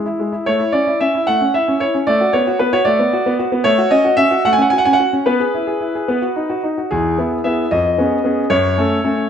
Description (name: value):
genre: classical-period piano sonatina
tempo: 75 BPM (dotted quarters)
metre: 6/8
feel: straight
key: E major from 3.6 s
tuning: A4 = 440 Hz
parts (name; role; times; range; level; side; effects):
- bright concert grand piano; solo; 0.0-9.3 s; E2 to G#5; -14 LUFS; equal; none
room: moderate recital hall reverb, RT60 1.4 s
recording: none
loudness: -14 LUFS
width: side -8 dB against mid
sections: 0.0-6.9 A section; 6.9-9.3 B section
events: none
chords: 0.5 A; 2.1 Bm/A; 3.6 F#m/A; 5.3 E/B; 6.1 B; 6.9 E; 7.7 C#7/E#; 8.5 F#m